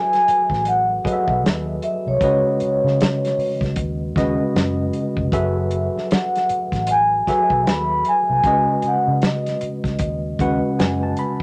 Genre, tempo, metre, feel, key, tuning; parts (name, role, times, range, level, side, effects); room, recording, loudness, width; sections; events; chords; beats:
R&B, neo-soul; 77 BPM; 4/4; swing 60% on 16ths; F# dorian; A4 = 438 Hz
vibraphone with soft mallets; melody; 0.0-11.1 s; C#5 to B5; -22 LUFS; equal
tine electric piano; accompaniment; 0.0-11.4 s; C#3 to B5; -26 LUFS; equal; overdrive
warm soul drum kit; drums; 0.1-11.4 s; hi-hat, kick drum, snare drum; -25 LUFS; equal
vintage muted fingered electric bass; bass; 0.3-11.1 s; E#1 to C#3; -28 LUFS; equal
moderate studio reverb, RT60 0.5 s; -20 LUFS; mono
0.0-11.4 A section
tine electric piano fill 10.0-11.4
0.0 F#m11; 2.2 C#9sus4; 5.3 F#m11; 8.4 C#9sus4
0.65 1.43 | 2.21 2.98 3.76 4.54 | 5.32 6.10 6.88 7.66 | 8.44 9.22 10.00 10.78